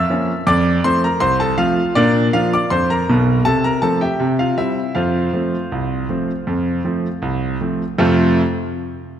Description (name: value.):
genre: ragtime piano.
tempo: 80 BPM.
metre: 2/4.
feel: straight.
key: F major.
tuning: A4 = 440 Hz.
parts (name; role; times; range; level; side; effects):
clear concert grand piano; solo; 0.0-8.4 s; B1 to E6; -15 LUFS; equal; none.
room: wet concert hall reverb, RT60 2.2 s.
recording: none.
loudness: -15 LUFS.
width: side -9 dB against mid.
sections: 0.0-8.0 A section; 8.0-9.2 B section.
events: none.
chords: 0.5 F; 2.0 Bb; 3.4 F/C; 4.2 C; 5.0 F.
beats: | 0.46 1.21 | 1.95 2.70 | 3.45 4.20 | 4.95 5.71 | 6.47 7.22 | 7.98.